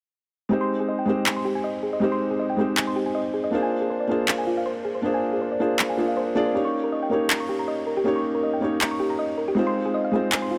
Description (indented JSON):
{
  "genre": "future bass",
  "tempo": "159 BPM",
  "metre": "4/4",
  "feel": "swing 54% on 16ths, half-time",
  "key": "Ab major",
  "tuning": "A4 = 438 Hz",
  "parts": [
    { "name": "felt-muted upright piano", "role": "accompaniment", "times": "0.5-10.6 s", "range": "Ab3 to D5", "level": "-26 LUFS", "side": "equal", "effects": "tape echo" },
    { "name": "thumb-piano-like synth pluck", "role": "arpeggios", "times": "0.5-10.6 s", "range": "F4 to Db6", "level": "-30 LUFS", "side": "equal", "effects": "chorus, tape echo" },
    { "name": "electronic handclaps", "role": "drums", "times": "1.3-10.4 s", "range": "none", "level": "-28 LUFS", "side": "equal", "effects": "studio reverb" }
  ],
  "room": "light reverb, small room ambience",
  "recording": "none",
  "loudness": "-24 LUFS",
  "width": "mono",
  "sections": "0.5-10.6 A section",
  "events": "none",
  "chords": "0.5 Abmaj7; 3.5 Bb9; 6.5 Eb7; 9.6 Fm7"
}